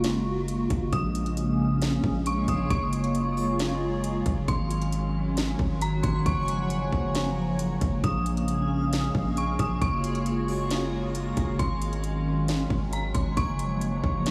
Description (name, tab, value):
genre	hip hop, atmospheric cloud-rap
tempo	135 BPM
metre	4/4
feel	half-time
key	unclear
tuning	A4 = 438 Hz
part	dark detuned synth bell	melody	0.0-14.3 s	Bb5 to Eb6	-36 LUFS	equal	chorus, tremolo, diffuse ambient delay
part	hollow soft pad	sustained chords	0.0-14.3 s	Db3 to Gb4	-31 LUFS	equal	ensemble chorus, sidechain pumping
part	long sustained 808-style bass	bass	0.0-14.3 s	Gb1 to Bb1	-32 LUFS	equal	none
part	trap drum kit	drums	0.0-14.3 s	hi-hat, kick drum, snare drum	-33 LUFS	equal	none
part	backwards swelling texture	texture	2.3-14.3 s	Gb4 to C6	-41 LUFS	equal	built-in reverb
room	wet huge ambient reverb, RT60 6.5 s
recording	dreamy mix soaked in reverb, small room ambience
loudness	-27 LUFS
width	mono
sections	0.0-14.3 A section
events	none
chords	0.0 Gbmaj9; 0.9 Bbm9; 2.7 Gbmaj9; 4.5 Ab7sus4; 6.3 Gbmaj9; 8.0 Bbm9; 9.8 Gbmaj9; 11.6 Ab7sus4; 13.4 Gbmaj9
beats	0.04 0.48 | 0.93 1.37 1.82 2.26 | 2.71 3.15 3.59 4.04 | 4.48 4.93 5.37 5.82 | 6.26 6.71 7.15 7.59 | 8.04 8.48 8.93 9.37 | 9.82 10.26 10.71 11.15 | 11.59 12.04 12.48 12.93 | 13.37 13.82 14.26